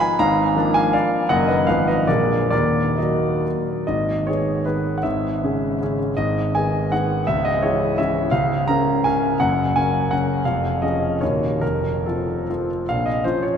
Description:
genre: classical, romantic triple-time dance for piano with dotted rhythms.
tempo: 124-182 BPM.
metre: 3/4.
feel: rubato.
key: Eb minor, G# minor from 3.9 s, Bb minor from 8.3 s.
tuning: A4 = 440 Hz.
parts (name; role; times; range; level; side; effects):
warm concert grand piano; solo; 0.0-13.6 s; Bb0 to Cb6; -18 LUFS; equal; none.
room: wet cathedral reverb, RT60 5.4 s.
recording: in a vast, echoing space.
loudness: -18 LUFS.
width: side -7 dB against mid.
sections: 0.0-3.9 A section; 3.9-12.9 B section.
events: none.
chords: 0.2 Bb7/Ab; 1.3 Ebm/Gb; 1.7 Fm7b5/Ab; 2.1 Bb7; 2.5 Ebm; 3.9 G#m; 5.0 C#m/G#; 6.2 G#m; 7.3 C#m; 8.3 Bbm/Db; 9.4 Gb; 10.5 Db/F; 11.2 Ebm7; 11.6 F; 12.9 Bbm.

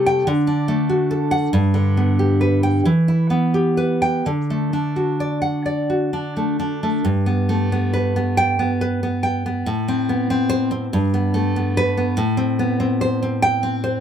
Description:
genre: romantic piece for solo classical guitar.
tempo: 42-50 BPM (dotted quarters).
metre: 6/8.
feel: rubato.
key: G major.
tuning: A4 = 439 Hz.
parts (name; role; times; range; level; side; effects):
nylon-string guitar; solo; 0.0-14.0 s; G2 to G5; -17 LUFS; equal; none.
room: light reverb.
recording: none.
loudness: -17 LUFS.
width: side -9 dB against mid.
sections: 0.0-7.0 A section; 7.0-14.0 B section.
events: none.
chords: 0.3 D; 1.5 G; 2.8 Em; 4.2 D; 7.0 G; 9.7 Amadd9; 10.9 G; 12.2 Am7.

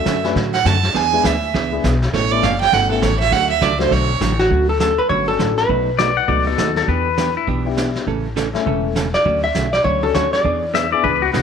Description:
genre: country, western swing.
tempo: 202 BPM.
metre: 4/4.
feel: swing 61% on 8ths.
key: D major.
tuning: A4 = 442 Hz.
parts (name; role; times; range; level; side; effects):
clear fiddle; second line; 0.0-4.5 s; A4 to A5; -18 LUFS; right 9 dB; none.
warm upright piano; accompaniment; 0.0-11.0 s; F#3 to B4; -25 LUFS; left 11 dB; none.
upright bass; bass; 0.0-11.4 s; E1 to A2; -22 LUFS; left 2 dB; none.
hollow-body jazz guitar; accompaniment; 0.1-11.4 s; B2 to A4; -23 LUFS; right 8 dB; none.
vintage brush drum kit; drums; 0.1-11.4 s; brushed snare drum, hi-hat, kick drum, snare drum; -26 LUFS; left 1 dB; none.
vintage hollow-body jazz guitar; melody; 4.4-6.4, 9.1-11.4 s; F#4 to E5; -18 LUFS; left 1 dB; none.
pedal steel guitar; second line; 6.0-7.5, 10.7-11.4 s; E4 to F#5; -18 LUFS; left 10 dB; slapback echo.
room: moderate plate reverb, RT60 1.4 s, small room ambience.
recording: 1960s-style stereo with parts hard left and right.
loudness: -15 LUFS.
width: side -7 dB against mid.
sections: 0.0-4.5 A section; 4.5-11.4 B section.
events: fiddle solo 0.0-4.5.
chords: 0.0 Dmaj7; 0.9 E7; 2.1 Aadd9; 3.3 D; 4.5 Dmaj7; 5.7 B7; 6.9 Em7; 8.1 A; 9.3 Dmaj7; 10.4 E7.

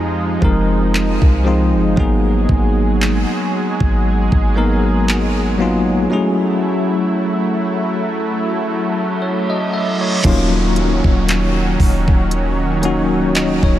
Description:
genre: contemporary R&B.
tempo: 58 BPM.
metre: 4/4.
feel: swing 54% on 16ths.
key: unclear.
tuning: A4 = 440 Hz.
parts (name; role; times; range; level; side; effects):
bell-like tine electric piano; accompaniment; 0.0-13.8 s; F3 to Fb5; -18 LUFS; left 2 dB; fast stereo tremolo.
lush unison pad; sustained chords; 0.0-13.8 s; Eb3 to Ab4; -21 LUFS; right 2 dB; chorus.
warm 808-style bass; bass; 0.0-13.8 s; Db1 to F2; -18 LUFS; equal; none.
smooth R&B drum kit; drums; 0.4-13.8 s; crash cymbal, handclaps, hi-hat, kick drum; -18 LUFS; equal; none.
reverse cymbal and downlifter; sound effects; 9.1-13.8 s; none; -26 LUFS; right 2 dB; none.
room: moderate huge ambient reverb, RT60 3.9 s.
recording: dreamy mix soaked in reverb.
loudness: -14 LUFS.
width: side -12 dB against mid.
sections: 0.0-10.2 A section; 10.2-13.8 B section.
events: break 6.1-10.2; reverse cymbal 9.1-10.2.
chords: 0.0 Fm7; 2.0 Abm7; 6.1 Gbm7; 10.2 Ebm7.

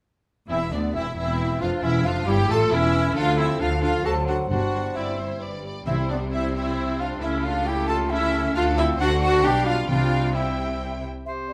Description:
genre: quick classical-period movement for symphony orchestra.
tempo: 135 BPM.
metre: 3/4.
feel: straight.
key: C major.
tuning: A4 = 442 Hz.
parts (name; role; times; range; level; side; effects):
warm studio violin section; melody; 0.5-11.0 s; D4 to G5; -38 LUFS; equal; none.
clear clarinet; second line; 0.5-11.5 s; B3 to G4; -32 LUFS; equal; none.
mellow hollow concert flute; second line; 0.5-11.5 s; D5 to A5; -33 LUFS; equal; none.
rich studio violin section; second line; 0.5-11.0 s; D5 to A5; -36 LUFS; equal; none.
warm studio viola section; accompaniment; 0.5-11.0 s; D4 to A4; -29 LUFS; equal; none.
warm French horn section; sustained chords; 0.5-11.5 s; D3 to C5; -34 LUFS; equal; none.
rich studio cello section; bass; 0.5-11.0 s; D2 to D3; -33 LUFS; equal; none.
warm studio double bass section; bass; 0.5-11.0 s; E1 to D2; -30 LUFS; equal; none.
timpani; percussion; 4.5-6.5, 9.9-10.5 s; G2 to C3; -31 LUFS; equal; none.
bright oboe; second line; 11.3-11.5 s; C5; -33 LUFS; equal; none.
room: moderate recital hall reverb, RT60 1.2 s.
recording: close, detailed microphones.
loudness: -23 LUFS.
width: mono.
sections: 0.5-11.3 A section.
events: none.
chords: 0.5 C/E; 1.8 A7/E; 3.2 Dm; 4.1 D7; 4.5 C/G; 5.4 G; 5.9 C; 7.2 A7/C#; 8.6 Dm; 9.0 D7; 9.4 G7/B; 9.9 C5.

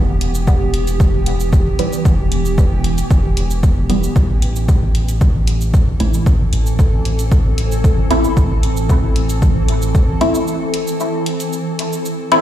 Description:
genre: dub techno.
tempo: 114 BPM.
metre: 4/4.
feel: straight.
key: unclear.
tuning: A4 = 440 Hz.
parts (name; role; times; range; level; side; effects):
granular cloud pad; sustained chords; 0.0-12.4 s; E3 to A4; -22 LUFS; right 1 dB; built-in reverb, sidechain pumping.
soft dub sub bass; bass; 0.0-10.1 s; E1 to A1; -17 LUFS; equal; sidechain pumping.
electronic hi-hat and cabasa; drums; 0.2-12.4 s; none; -29 LUFS; right 1 dB; none.
electronic kick drum; drums; 0.5-10.1 s; none; -13 LUFS; equal; none.
filtered dub chord stab; stabs; 1.8-12.4 s; E3 to E4; -19 LUFS; equal; phaser, sidechain pumping, dub echo.
room: light reverb, digital ambience.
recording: played on a big sound system in a bare room, stone room reverb.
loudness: -13 LUFS.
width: side -12 dB against mid.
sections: 0.0-12.4 A section.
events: filter sweep on synth stab 0.0-12.4; break 10.5-12.4.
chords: 0.0 Em; 4.2 Am.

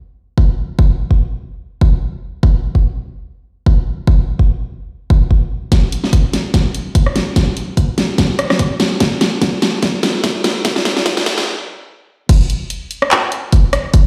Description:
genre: future bass.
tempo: 146 BPM.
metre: 4/4.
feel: swing 55% on 16ths, half-time.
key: none.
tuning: none.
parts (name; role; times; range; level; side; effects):
electronic kick drum; drums; 0.4-14.0 s; none; -14 LUFS; equal; studio reverb.
dubstep drum kit; drums; 5.7-14.0 s; crash cymbal, handclaps, hi-hat, rim click, snare drum; -18 LUFS; equal; studio reverb.
room: moderate digital room reverb, RT60 1.1 s.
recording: played on a big sound system in a bare room, stone room reverb, high-pass filter.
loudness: -16 LUFS.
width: mono.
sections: 0.0-5.7 A section; 5.7-12.3 B section; 12.3-14.1 C section.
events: build-up 5.7-12.3; drum fill 5.7-11.5; filter sweep 5.7-12.3; stop 11.5-12.3; drop 12.3-14.1.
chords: none.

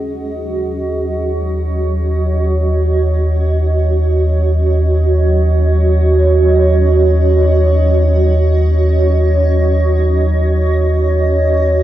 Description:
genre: ambient.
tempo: free time.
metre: none.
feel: none.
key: unclear.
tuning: A4 = 444 Hz.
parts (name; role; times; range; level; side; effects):
granular cloud pad; sustained chords; 0.0-11.8 s; C#4 to F#5; -16 LUFS; right 2 dB; built-in reverb.
warm sub bass; bass; 0.0-11.8 s; D#2; -13 LUFS; equal; none.
room: moderate plate reverb, RT60 3.4 s.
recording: cassette tape, small room ambience.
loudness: -11 LUFS.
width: side -13 dB against mid.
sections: 0.0-11.8 A section.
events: filter sweep on ambient pad 0.0-11.8.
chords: 0.0 D#m7.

